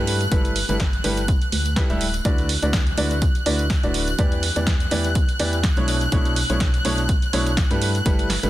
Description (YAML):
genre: piano house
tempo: 124 BPM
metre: 4/4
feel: swing 55% on 16ths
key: B minor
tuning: A4 = 440 Hz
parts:
  - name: clear chamber violin section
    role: sustained chords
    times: 0.0-8.5 s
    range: F#6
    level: -29 LUFS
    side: equal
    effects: sidechain pumping
  - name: clear upright piano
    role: riff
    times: 0.0-8.5 s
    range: B2 to E5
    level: -25 LUFS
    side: left 1 dB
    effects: sidechain pumping, ping-pong delay
  - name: organ-like FM bass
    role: bass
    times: 0.0-8.5 s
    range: D1 to G2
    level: -25 LUFS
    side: equal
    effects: sidechain pumping
  - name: punchy analog drum machine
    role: drums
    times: 0.1-8.5 s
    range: hi-hat, snare drum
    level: -27 LUFS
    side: right 2 dB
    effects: none
  - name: tambourine and congas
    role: percussion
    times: 0.2-8.5 s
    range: none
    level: -32 LUFS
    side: right 7 dB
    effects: none
  - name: electronic kick drum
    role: drums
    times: 0.3-8.2 s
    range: none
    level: -21 LUFS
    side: equal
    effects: none
room: small room ambience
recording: dense, heavily limited modern master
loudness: -18 LUFS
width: side -15 dB against mid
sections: 0.0-8.5 A section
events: none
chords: 0.1 G69; 2.3 D69; 4.2 Bm11; 7.8 G69